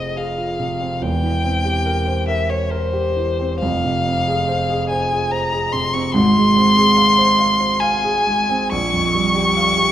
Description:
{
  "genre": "classical, romantic duo for violin and grand piano",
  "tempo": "70 BPM",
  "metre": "3/4",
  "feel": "uneven beats, rubato",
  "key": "F minor",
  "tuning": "A4 = 440 Hz",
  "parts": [
    { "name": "rich violin", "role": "melody", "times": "0.0-9.9 s", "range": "C5 to Db6", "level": "-18 LUFS", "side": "left 1 dB", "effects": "none" },
    { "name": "warm concert grand piano", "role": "accompaniment", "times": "0.0-9.9 s", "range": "E1 to F5", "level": "-19 LUFS", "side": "right 1 dB", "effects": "none" }
  ],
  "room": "wet concert hall reverb, RT60 2.2 s",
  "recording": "minimal, uncompressed stereo recording",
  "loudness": "-15 LUFS",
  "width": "side -11 dB against mid",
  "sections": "0.0-9.9 A section",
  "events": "none",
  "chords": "0.0 Fm; 1.0 C7/E; 3.6 Fm; 6.2 Fm/Ab; 8.7 Gm7b5/Bb",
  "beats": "0.16 | 1.03 1.87 2.72 | 3.63 4.49 5.33 | 6.16 6.98 7.81 | 8.72 9.56"
}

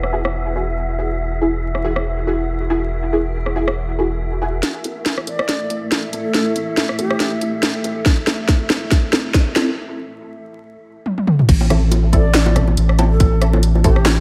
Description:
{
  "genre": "deep dubstep",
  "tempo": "140 BPM",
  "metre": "4/4",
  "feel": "swing 55% on 16ths, half-time",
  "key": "A phrygian",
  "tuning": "A4 = 443 Hz",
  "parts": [
    { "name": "granular cloud pad", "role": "sustained chords", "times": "0.0-9.7 s", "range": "A3 to F#5", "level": "-29 LUFS", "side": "equal", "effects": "built-in reverb" },
    { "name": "saturated sub bass", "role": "bass", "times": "0.0-4.6, 11.5-14.2 s", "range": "E1 to A1", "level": "-20 LUFS", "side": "equal", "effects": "none" },
    { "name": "garage drum kit", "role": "drums", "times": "0.0-14.2 s", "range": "crash cymbal, handclaps, hi-hat, rim click, snare drum, toms", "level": "-21 LUFS", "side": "equal", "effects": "overdrive, low-pass filter on snare, studio reverb, low-pass filter on hats, low-pass filter on toms, low-pass filter on cymbals" },
    { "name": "wind-like tuned noise texture", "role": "texture", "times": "0.0-9.8 s", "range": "E5", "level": "-33 LUFS", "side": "equal", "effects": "built-in reverb" },
    { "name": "filtered dub chord stab", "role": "stabs", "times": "0.1-14.0 s", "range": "C4 to A4", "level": "-26 LUFS", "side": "equal", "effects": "phaser, ensemble chorus, cassette tape, dub echo" },
    { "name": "long shakuhachi", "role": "melody", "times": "5.3-7.3, 12.1-14.2 s", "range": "G4 to D5", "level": "-30 LUFS", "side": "equal", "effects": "dub echo" },
    { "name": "electronic kick drum", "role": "drums", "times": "8.1-13.9 s", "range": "none", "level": "-17 LUFS", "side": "equal", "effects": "overdrive, studio reverb" },
    { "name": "bongos and congas", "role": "percussion", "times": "11.6-14.2 s", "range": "none", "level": "-25 LUFS", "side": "equal", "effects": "none" }
  ],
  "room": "light reverb",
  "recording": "vinyl crackle",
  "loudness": "-18 LUFS",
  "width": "mono",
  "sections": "0.0-4.6 A section; 4.6-11.5 B section; 11.5-14.2 C section",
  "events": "filter sweep on ambient pad 0.0-4.6; build-up 4.6-11.5; drum fill 4.6-9.8, 11.1-11.5; break 9.8-11.5; drop 11.5-14.2",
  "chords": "0.0 Eadd9; 4.6 Am",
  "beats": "0.34 0.77 | 1.20 1.63 2.06 2.49 | 2.92 3.34 3.77 4.20 | 4.63 5.06 5.49 5.92 | 6.34 6.77 7.20 7.63 | 8.06 8.49 8.91 9.34 | 9.77 10.20 10.63 11.06 | 11.49 11.91 12.34 12.77 | 13.20 13.63 14.06"
}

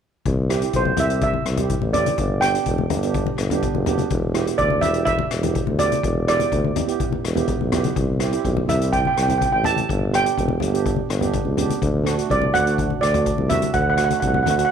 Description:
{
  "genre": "calypso",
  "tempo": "125 BPM",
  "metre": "4/4",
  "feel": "straight",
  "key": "unclear",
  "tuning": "A4 = 439 Hz",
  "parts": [
    { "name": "warm tuba", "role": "bass", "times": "0.3-14.7 s", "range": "E1 to D2", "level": "-23 LUFS", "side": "left 1 dB", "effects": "none" },
    { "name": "street-band drum kit", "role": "drums", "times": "0.3-14.7 s", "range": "hi-hat, kick drum, rim click", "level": "-27 LUFS", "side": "left 4 dB", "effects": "none" },
    { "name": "steel pan", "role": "accompaniment", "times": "0.5-14.7 s", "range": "A3 to G4", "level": "-26 LUFS", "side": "right 10 dB", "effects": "none" },
    { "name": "steel pan", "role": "melody", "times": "0.8-14.7 s", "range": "C5 to A5", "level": "-21 LUFS", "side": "right 3 dB", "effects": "none" },
    { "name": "congas", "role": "percussion", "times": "0.9-14.6 s", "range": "none", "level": "-28 LUFS", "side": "left 9 dB", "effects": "none" }
  ],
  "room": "light reverb",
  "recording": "1960s-style stereo with parts hard left and right",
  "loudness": "-18 LUFS",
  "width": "side -8 dB against mid",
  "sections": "0.3-14.7 A section",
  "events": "none",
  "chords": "0.3 C; 2.2 G; 4.1 Em7; 8.0 C; 9.9 G; 11.8 D",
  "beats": "| 0.26 0.74 1.22 1.70 | 2.18 2.66 3.15 3.63 | 4.11 4.59 5.07 5.55 | 6.03 6.51 7.00 7.48 | 7.96 8.44 8.92 9.40 | 9.89 10.37 10.85 11.33 | 11.81 12.30 12.78 13.26 | 13.74 14.22 14.71"
}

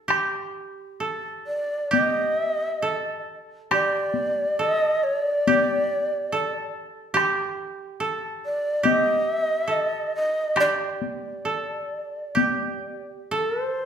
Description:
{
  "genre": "japanese traditional, Japanese chamber music",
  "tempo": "69 BPM",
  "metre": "4/4",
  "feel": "uneven beats, rubato",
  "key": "unclear",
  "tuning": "A4 = 440 Hz",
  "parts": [
    { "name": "koto", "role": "second line", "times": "0.0-13.9 s", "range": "G4 to A4", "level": "-26 LUFS", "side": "right 3 dB", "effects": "none" },
    { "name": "solo taiko drums", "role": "percussion", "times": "0.1-12.6 s", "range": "none", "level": "-27 LUFS", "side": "left 6 dB", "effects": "none" },
    { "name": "breathy mellow shakuhachi", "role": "melody", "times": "1.5-13.9 s", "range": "C5 to Eb5", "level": "-24 LUFS", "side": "equal", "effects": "none" }
  ],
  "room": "wet recital hall reverb, RT60 1.3 s",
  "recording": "recorded in a church or concert hall",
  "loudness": "-22 LUFS",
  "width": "side -8 dB against mid",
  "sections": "0.1-13.9 A section",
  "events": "none",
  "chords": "none",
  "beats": "| 0.11 1.02 1.93 2.83 | 3.71 4.59 5.47 6.31 | 7.17 8.02 8.86 9.70 | 10.57 11.45 12.36 13.34"
}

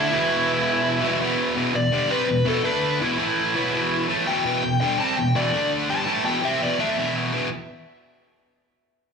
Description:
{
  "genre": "punk",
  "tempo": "167 BPM",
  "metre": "4/4",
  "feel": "straight",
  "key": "E minor",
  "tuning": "A4 = 440 Hz",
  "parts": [
    { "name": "dark smooth lead guitar", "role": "melody", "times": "0.0-7.1 s", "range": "E4 to A5", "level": "-24 LUFS", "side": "left 2 dB", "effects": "overdrive, ping-pong delay" },
    { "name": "distorted electric guitar", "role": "riff", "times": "0.0-7.5 s", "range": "E2 to D4", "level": "-22 LUFS", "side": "equal", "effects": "overdrive, slapback echo" }
  ],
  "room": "digital ambience",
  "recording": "live gig heard through the venue's PA, club reverb",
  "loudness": "-20 LUFS",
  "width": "side -5 dB against mid",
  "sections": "0.0-1.6 A section; 1.6-7.3 B section; 7.3-8.8 C section",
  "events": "lead electric guitar solo 1.6-7.3",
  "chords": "0.1 E5; 1.6 Em; 2.6 D5; 3.0 E5; 3.2 A5; 3.5 Em; 5.5 D5; 5.9 Em; 7.3 E5",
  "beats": "| 0.13 0.49 0.85 1.21 | 1.56 1.93 2.29 2.65 | 3.00 3.37 3.73 4.08 | 4.45 4.81 5.17 5.53 | 5.89 6.25 6.61 6.97 | 7.33"
}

